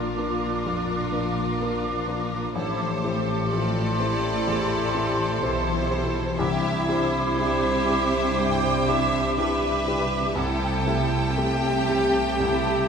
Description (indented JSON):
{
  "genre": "cinematic",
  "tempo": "62 BPM",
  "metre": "4/4",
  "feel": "rubato",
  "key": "A minor",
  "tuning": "A4 = 445 Hz",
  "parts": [
    { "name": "rich symphonic violin section", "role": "melody", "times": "0.0-12.9 s", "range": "Bb4 to G5", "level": "-32 LUFS", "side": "left 1 dB", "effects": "none" },
    { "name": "large flute ensemble", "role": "second line", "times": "0.0-12.9 s", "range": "A5 to D6", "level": "-30 LUFS", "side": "right 2 dB", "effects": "none" },
    { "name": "rich symphonic violin section", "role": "second line", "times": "0.0-12.9 s", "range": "E4 to C5", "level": "-32 LUFS", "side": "left 2 dB", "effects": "none" },
    { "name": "warm clarinet", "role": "second line", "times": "0.0-12.9 s", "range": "E4 to G4", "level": "-32 LUFS", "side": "equal", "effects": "none" },
    { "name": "felt-muted upright piano", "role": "accompaniment", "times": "0.0-12.9 s", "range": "A1 to C5", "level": "-31 LUFS", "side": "left 2 dB", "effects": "none" },
    { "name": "rich symphonic viola section", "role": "accompaniment", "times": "0.0-12.9 s", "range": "F3 to G4", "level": "-32 LUFS", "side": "right 1 dB", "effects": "none" },
    { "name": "warm French horn section", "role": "sustained chords", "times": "0.0-12.9 s", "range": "A3 to C5", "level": "-32 LUFS", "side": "left 3 dB", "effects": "none" },
    { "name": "concert harp", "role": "arpeggios", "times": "0.0-12.9 s", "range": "A2 to D6", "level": "-33 LUFS", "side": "left 6 dB", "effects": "none" },
    { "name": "dark symphonic double bass section", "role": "bass", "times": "0.0-12.9 s", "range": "A1 to C2", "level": "-31 LUFS", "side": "right 2 dB", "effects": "none" },
    { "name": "warm symphonic cello section", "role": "bass", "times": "0.0-12.9 s", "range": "A2 to C3", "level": "-30 LUFS", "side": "right 3 dB", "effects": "none" }
  ],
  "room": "wet concert hall reverb, RT60 2.0 s",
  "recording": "minimal, uncompressed stereo recording",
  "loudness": "-22 LUFS",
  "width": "side -6 dB against mid",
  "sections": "0.0-12.9 A section",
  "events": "none",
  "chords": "0.0 Bb; 2.5 Am7; 6.4 Cadd9; 10.4 Am7/C",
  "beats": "0.64 1.60 | 2.55 3.51 4.47 5.43 | 6.39 7.38 8.38 9.38 | 10.37 11.38 12.40"
}